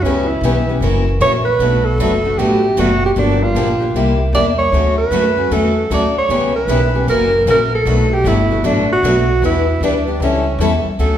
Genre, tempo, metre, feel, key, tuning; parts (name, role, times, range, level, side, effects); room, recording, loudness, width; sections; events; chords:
acoustic string swing (jazz manouche); 154 BPM; 4/4; swing 64% on 8ths; A4 = 437 Hz
breathy alto saxophone; melody; 0.0-11.2 s; C#4 to D5; -16 LUFS; right 2 dB
picked steel-string acoustic guitar; accompaniment; 0.0-11.2 s; B2 to A4; -20 LUFS; left 4 dB
upright bass; bass; 0.0-11.2 s; F#1 to F#2; -18 LUFS; equal
picked steel-string acoustic guitar; accompaniment; 0.1-11.2 s; B2 to B4; -22 LUFS; right 2 dB
wet recital hall reverb, RT60 1.3 s; recorded in a church or concert hall; -12 LUFS; side -10 dB against mid
0.0-11.0 A section
0.0 C#m7b5; 0.8 F#7; 1.6 Bm7; 3.2 Gm7; 3.9 C7; 4.7 Dmaj9; 6.3 C#m7b5; 7.1 F#7; 7.9 Bm7; 9.4 Em7; 10.2 A7